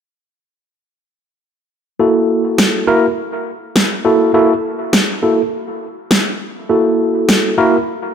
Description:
glitch hop; 102 BPM; 4/4; swing 58% on 16ths; A4 = 440 Hz
tine electric piano; stabs; 2.0-7.8 s; A#3 to A#4; -14 LUFS; equal; medium stereo tremolo, low-pass filter, dub echo
electronic snare drum; drums; 2.6-7.4 s; -15 LUFS; equal
moderate lush hall reverb, RT60 1.8 s; -12 LUFS; side -8 dB against mid
2.0-8.1 A section
2.0 F#7#9
| 1.99 2.58 3.17 3.76 | 4.35 4.93 5.52 6.11 | 6.70 7.29

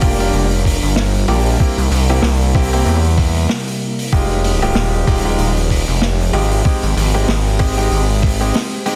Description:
glitch hop; 95 BPM; 4/4; swing 57% on 16ths; A4 = 438 Hz
warbly tape-like pad; sustained chords; 0.0-9.0 s; C3 to Bb4; -28 LUFS; equal; chorus, built-in reverb, vintage 12-bit sampler grit, sidechain pumping
warm concert grand piano; stabs; 0.0-9.0 s; Ab3 to G4; -23 LUFS; equal; sidechain pumping, dub echo
gritty driven synth bass; bass; 0.0-8.5 s; Eb1 to E2; -18 LUFS; equal; tube saturation
electronic kick drum; drums; 0.0-8.4 s; -18 LUFS; equal
vintage drum kit; drums; 0.0-9.0 s; hi-hat, rim click, snare drum; -24 LUFS; equal
small room ambience; dense, heavily limited modern master; -16 LUFS; mono
0.0-9.0 A section
0.0 Gm7; 1.6 C7; 4.1 Fm9; 6.7 Abmaj7
0.34 0.97 | 1.60 2.23 2.86 3.49 | 4.12 4.76 5.39 6.02 | 6.65 7.28 7.91 8.54

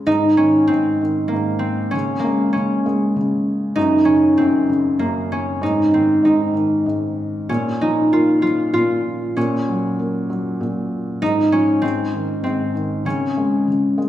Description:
children's music, lullaby; 97 BPM; 3/4; rubato; A4 = 440 Hz
concert harp; melody; 0.0-14.1 s; Bb3 to F4; -18 LUFS; equal
felt-muted upright piano; accompaniment; 0.0-14.1 s; Gb2 to Bb3; -21 LUFS; left 1 dB
wet recital hall reverb, RT60 1.7 s; recorded in a church or concert hall; -16 LUFS; side -12 dB against mid
0.1-14.1 A section
0.1 Ab; 1.9 Db5; 3.8 Gb5; 5.6 Ab5; 7.5 Bb5; 9.4 Gb/Bb; 11.2 Db/Ab; 11.8 Ab; 13.1 Db5
| 0.07 0.70 1.32 | 1.94 2.55 3.15 | 3.77 4.38 5.00 | 5.61 6.24 6.86 | 7.49 8.13 8.75 | 9.37 9.98 10.60 | 11.21 11.83 12.44 | 13.05 13.68

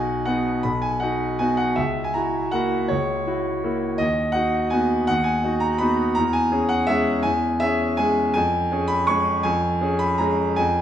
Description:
classical, piano waltz; 163 BPM; 3/4; uneven beats, rubato; B major; A4 = 440 Hz
bright concert grand piano; solo; 0.0-10.8 s; B1 to C#6; -19 LUFS; equal
wet recital hall reverb, RT60 1.7 s; dark, warm production; -19 LUFS; side -10 dB against mid
0.0-10.8 A section
0.0 B; 1.8 F#7/C#; 4.0 B/D#; 6.2 C#m/E; 8.3 C#/E#
0.27 | 0.65 1.02 1.41 | 1.78 2.15 2.53 | 2.90 3.26 3.63 | 4.00 4.35 4.72 | 5.09 5.44 5.81 | 6.17 6.52 6.89 | 7.25 7.62 7.99 | 8.35 8.71 9.08 | 9.45 9.81 10.20 | 10.57

